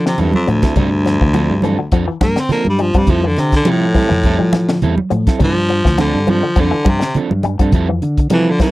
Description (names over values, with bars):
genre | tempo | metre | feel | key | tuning
afrobeat | 103 BPM | 4/4 | swing 55% on 16ths | unclear | A4 = 440 Hz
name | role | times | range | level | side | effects
raspy baritone saxophone | melody | 0.0-8.7 s | D2 to C4 | -17 LUFS | equal | none
fingered electric bass | bass | 0.0-8.6 s | D2 to F3 | -17 LUFS | equal | none
electric guitar with an envelope filter | arpeggios | 0.1-8.7 s | C3 to G3 | -22 LUFS | left 6 dB | none
tight funk drum kit | drums | 0.1-8.7 s | hi-hat, kick drum, snare drum | -17 LUFS | equal | none
electric guitar at the edge of break-up | stabs | 0.2-8.7 s | F3 to A4 | -21 LUFS | right 5 dB | none
congas | percussion | 0.2-8.7 s | none | -20 LUFS | right 3 dB | none
room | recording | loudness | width
little or no reverb | dry, close 1970s-style studio recording | -12 LUFS | side -17 dB against mid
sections
0.0-8.7 A section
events
baritone saxophone solo 0.0-8.7; drum fill 0.2-0.8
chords
0.0 Fmaj9; 0.8 G9sus4; 3.1 Fmaj9; 5.4 G9sus4; 7.7 Fmaj9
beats
0.18 | 0.76 1.34 1.92 2.50 | 3.08 3.66 4.25 4.83 | 5.41 5.99 6.57 7.15 | 7.73 8.31